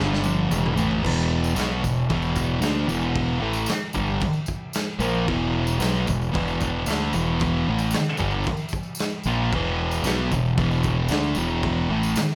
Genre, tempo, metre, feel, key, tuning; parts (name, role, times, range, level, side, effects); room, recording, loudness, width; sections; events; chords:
garage rock duo or trio; 113 BPM; 4/4; straight; E minor; A4 = 441 Hz
thick fuzz guitar; riff; 0.0-12.2 s; E2 to D4; -25 LUFS; equal; distortion
growling fingered electric bass; bass; 0.0-12.2 s; E1 to D2; -31 LUFS; equal; overdrive
raw garage drum kit; drums; 0.1-12.3 s; crash cymbal, kick drum, snare drum, toms; -31 LUFS; equal
tambourine; percussion; 0.2-12.3 s; -41 LUFS; equal
light reverb, small room ambience; -24 LUFS; mono
0.0-1.0 A section; 1.0-12.3 B section
drum fill 0.0-1.0
0.0 G5; 0.5 E5; 1.0 Em